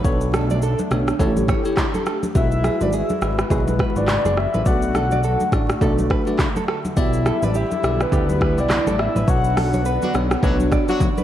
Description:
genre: afrobeats.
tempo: 104 BPM.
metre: 4/4.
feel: swing 58% on 16ths.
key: unclear.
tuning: A4 = 441 Hz.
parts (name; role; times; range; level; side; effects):
bell-like tine electric piano; accompaniment; 0.0-11.1 s; G#3 to D5; -26 LUFS; left 2 dB; phaser.
lush unison pad; sustained chords; 0.0-11.2 s; D3 to G4; -28 LUFS; right 1 dB; chorus, phaser.
fat analog bass; bass; 0.0-10.8 s; F#1 to D2; -22 LUFS; equal; none.
afro-pop drum kit; drums; 0.0-11.2 s; handclaps, hi-hat, kick drum, rim click, shaker, toms; -22 LUFS; equal; none.
nylon-string guitar; riff; 0.3-11.2 s; G4 to D5; -29 LUFS; right 6 dB; ping-pong delay.
congas; percussion; 0.3-11.2 s; none; -28 LUFS; equal; none.
soft octave-layered synth lead; melody; 2.4-10.2 s; B4 to F#5; -25 LUFS; left 2 dB; chorus, ping-pong delay.
warm horn section; second line; 10.0-11.1 s; F#3 to F#4; -28 LUFS; left 2 dB; none.
room: moderate plate reverb, RT60 2.0 s.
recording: dreamy mix soaked in reverb, vinyl crackle.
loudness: -17 LUFS.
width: side -11 dB against mid.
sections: 0.0-2.4 A section; 2.4-11.2 B section.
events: band accent 9.3-11.2; drum fill 11.0.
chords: 0.0 Bm9; 1.2 A7; 2.4 Eadd9; 4.7 D; 7.0 Em7; 9.3 Bmadd9.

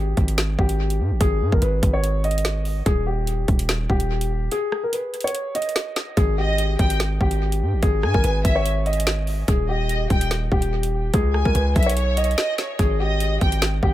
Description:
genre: hip hop, drill.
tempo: 145 BPM.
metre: 4/4.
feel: half-time.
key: G# harmonic minor.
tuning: A4 = 441 Hz.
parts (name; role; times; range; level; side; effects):
dark grand piano; melody; 0.0-13.9 s; G4 to D#5; -26 LUFS; left 1 dB; dub echo.
hard-hitting 808-style bass; bass; 0.0-13.9 s; D#1 to G#2; -22 LUFS; equal; none.
drill drum kit; drums; 0.2-13.9 s; hi-hat, kick drum, rim click, snare drum; -22 LUFS; equal; none.
warm studio violin section; second line; 6.4-13.6 s; C#5 to G#5; -27 LUFS; left 1 dB; dub echo.
room: little or no reverb.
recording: echo-heavy mix.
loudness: -19 LUFS.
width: side -14 dB against mid.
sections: 0.0-13.9 A section.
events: break 4.5-6.2.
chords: 0.0 G#5; 2.9 D#; 4.5 N.C.; 6.2 G#5; 9.5 D#; 11.1 C#5; 12.8 G#5.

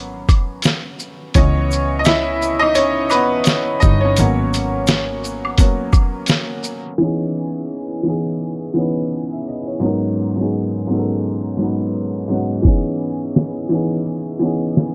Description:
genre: lo-fi hip hop.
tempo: 85 BPM.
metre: 4/4.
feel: swing 56% on 16ths.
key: unclear.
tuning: A4 = 439 Hz.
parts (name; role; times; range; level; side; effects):
clear upright piano; accompaniment; 0.0-14.9 s; G#2 to G#5; -21 LUFS; equal; none.
warm double bass; bass; 0.0-6.3 s; G1 to C#2; -23 LUFS; equal; none.
lo-fi sampler-style drum kit; drums; 0.3-6.8, 12.6-14.9 s; hi-hat, kick drum, shaker, snare drum; -18 LUFS; equal; none.
tube shaker and woodblock; percussion; 0.3-6.8 s; none; -31 LUFS; equal; none.
room: light reverb.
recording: low-pass filter.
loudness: -18 LUFS.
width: mono.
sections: 0.0-7.0 A section; 7.0-14.9 B section.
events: upright piano solo 0.0-7.0; filter sweep 7.0-14.9.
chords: 0.0 G#m11; 1.4 C#m9; 4.2 G#m11; 7.0 C#m9; 9.8 G#m11; 12.6 C#m9.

